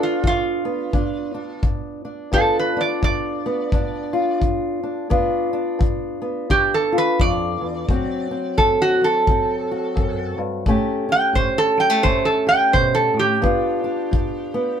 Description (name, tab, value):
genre	acoustic country blues, solo or duo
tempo	86 BPM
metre	4/4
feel	swing 60% on 8ths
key	unclear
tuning	A4 = 440 Hz
part	metal-body resonator slide guitar	melody	0.0-14.8 s	F4 to G5	-19 LUFS	right 2 dB	none
part	fingerpicked old ladder-braced acoustic guitar	accompaniment	0.0-14.8 s	D2 to G4	-22 LUFS	left 1 dB	none
part	kick drum	drums	0.2-14.3 s	none	-21 LUFS	left 1 dB	none
room	light reverb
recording	band playing live in one room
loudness	-18 LUFS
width	side -8 dB against mid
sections	0.0-14.8 A section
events	resonator guitar played with a steel bar solo 0.0-14.8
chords	0.0 G7; 7.9 D7; 10.7 A7; 13.4 G7